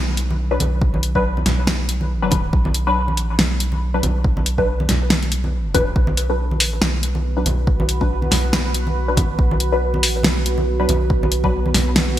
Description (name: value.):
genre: deep dubstep.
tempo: 140 BPM.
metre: 4/4.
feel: swing 57% on 16ths, half-time.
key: B minor.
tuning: A4 = 440 Hz.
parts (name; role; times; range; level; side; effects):
soft dub sub bass; bass; 0.0-12.2 s; B1; -21 LUFS; equal; none.
deep house drum kit; drums; 0.2-12.2 s; hi-hat, snare drum; -20 LUFS; equal; gated reverb.
congas; percussion; 0.3-12.1 s; none; -27 LUFS; right 1 dB; dub echo.
filtered dub chord stab; stabs; 0.5-11.5 s; F#3 to B4; -24 LUFS; left 2 dB; phaser, ensemble chorus, dub echo.
electronic kick drum; drums; 0.8-11.5 s; none; -19 LUFS; equal; none.
deep dark ambient pad; sustained chords; 7.0-12.2 s; B3 to B4; -25 LUFS; right 2 dB; chorus, built-in reverb.
room: light reverb, digital ambience.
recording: bright 1980s-style digital production.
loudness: -16 LUFS.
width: side -12 dB against mid.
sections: 0.0-12.2 A section.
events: none.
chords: 0.0 B5.